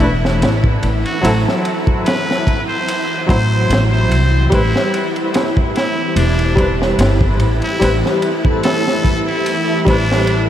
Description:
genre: trip hop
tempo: 73 BPM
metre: 4/4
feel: swing 55% on 16ths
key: A dorian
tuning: A4 = 437 Hz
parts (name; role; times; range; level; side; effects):
- trumpet with straight mute; melody; 0.0-10.4 s; D4 to C5; -22 LUFS; equal; tape echo
- felt-muted upright piano; accompaniment; 0.0-10.5 s; F#3 to C5; -20 LUFS; equal; tremolo, tape echo
- string machine, cellos; sustained chords; 0.0-10.5 s; E4 to E5; -22 LUFS; equal; ensemble chorus, vintage 12-bit sampler grit
- upright bass; bass; 0.0-10.5 s; E1 to C2; -16 LUFS; equal; none
- crunchy breakbeat drum kit; drums; 0.0-10.5 s; kick drum, ride cymbal, snare drum; -19 LUFS; equal; none
- backwards swelling texture; texture; 5.3-10.5 s; A3 to A4; -27 LUFS; left 2 dB; built-in reverb, lush chorus
room: moderate huge ambient reverb, RT60 7.8 s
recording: dreamy mix soaked in reverb, vinyl crackle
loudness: -13 LUFS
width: side -11 dB against mid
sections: 0.0-10.5 A section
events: none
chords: 0.0 Bm7; 1.2 Am6; 4.5 Am9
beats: 0.41 | 1.23 2.06 2.88 3.70 | 4.52 5.34 6.16 6.99 | 7.81 8.63 9.45 10.27

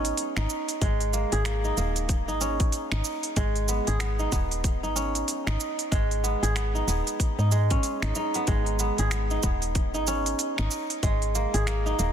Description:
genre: organic downtempo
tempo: 94 BPM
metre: 4/4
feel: swing 60% on 16ths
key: G# minor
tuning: A4 = 440 Hz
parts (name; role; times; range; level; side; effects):
- kora; arpeggios; 0.0-12.1 s; G#3 to G#4; -28 LUFS; right 2 dB; ping-pong delay
- woody FM bass; bass; 0.0-12.1 s; D#1 to G#2; -27 LUFS; equal; sidechain pumping
- organic electronic drum kit; drums; 0.0-12.1 s; cabasa, finger snaps, hi-hat; -33 LUFS; right 3 dB; none
- electronic kick drum; drums; 0.8-11.2 s; none; -26 LUFS; equal; none
room: light reverb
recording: dense, heavily limited modern master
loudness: -24 LUFS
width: side -9 dB against mid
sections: 0.0-12.1 A section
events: none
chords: 0.0 G#m; 0.8 D#7sus4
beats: 0.18 | 0.81 1.45 2.09 2.73 | 3.37 4.00 4.64 5.28 | 5.92 6.56 7.20 7.83 | 8.47 9.11 9.75 10.39 | 11.03 11.66

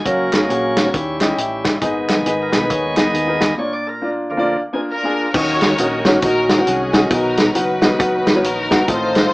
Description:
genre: uptempo gospel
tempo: 136 BPM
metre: 4/4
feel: swing 62% on 8ths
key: Eb minor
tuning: A4 = 440 Hz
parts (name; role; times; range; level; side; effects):
- warm baby grand piano; accompaniment; 0.0-9.3 s; Ab2 to G5; -20 LUFS; left 1 dB; none
- bright tonewheel organ; sustained chords; 0.0-9.3 s; D3 to Eb5; -22 LUFS; equal; overdrive, stopped rotary speaker
- fingered electric bass; bass; 0.1-9.3 s; Gb1 to Eb2; -29 LUFS; equal; none
- warm soul drum kit; drums; 0.1-9.2 s; crash cymbal, hi-hat, kick drum, snare drum; -17 LUFS; equal; none
- group handclap; percussion; 0.3-3.5 s; none; -28 LUFS; equal; none
- warm studio string section; melody; 4.9-9.3 s; Db4 to Db5; -21 LUFS; left 1 dB; none
room: moderate small room reverb, RT60 0.5 s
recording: band playing live in one room, small speaker sound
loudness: -14 LUFS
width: side -21 dB against mid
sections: 0.0-5.3 A section; 5.3-9.3 B section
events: tonewheel organ solo 0.0-5.3; break 3.6-5.3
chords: 0.1 Gb; 0.9 Eb7b9; 1.8 Abm; 3.6 Bb; 5.3 Ebm7; 7.1 Bmaj7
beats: | 0.05 0.49 0.93 1.38 | 1.82 2.26 2.70 3.14 | 3.58 4.02 4.46 4.91 | 5.35 5.79 6.23 6.67 | 7.11 7.56 8.00 8.44 | 8.88 9.32

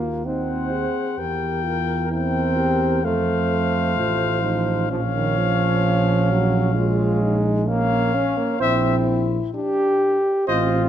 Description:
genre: classical, brass quintet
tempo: 65 BPM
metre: 4/4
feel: straight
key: unclear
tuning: A4 = 439 Hz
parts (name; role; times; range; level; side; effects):
- warm French horn; accompaniment; 0.0-10.9 s; C4 to A4; -28 LUFS; left 6 dB; none
- warm trombone; accompaniment; 0.0-10.9 s; Eb3 to G4; -23 LUFS; right 2 dB; none
- dark tuba; bass; 0.0-10.9 s; A1 to F2; -23 LUFS; right 2 dB; none
- mellow flugelhorn; second line; 0.2-10.8 s; Bb4 to Db5; -28 LUFS; right 8 dB; none
- warm trumpet; melody; 0.3-10.8 s; Eb5 to G5; -26 LUFS; left 9 dB; none
room: wet recital hall reverb, RT60 1.6 s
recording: none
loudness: -18 LUFS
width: side -10 dB against mid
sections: 0.0-10.9 A section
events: none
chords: 0.0 Cdim/Eb; 1.2 C7/E; 3.0 F; 4.9 Bbm; 8.6 C7/Bb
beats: 0.25 | 1.18 2.11 3.04 3.98 | 4.91 5.84 6.76 7.68 | 8.60 9.54 10.47

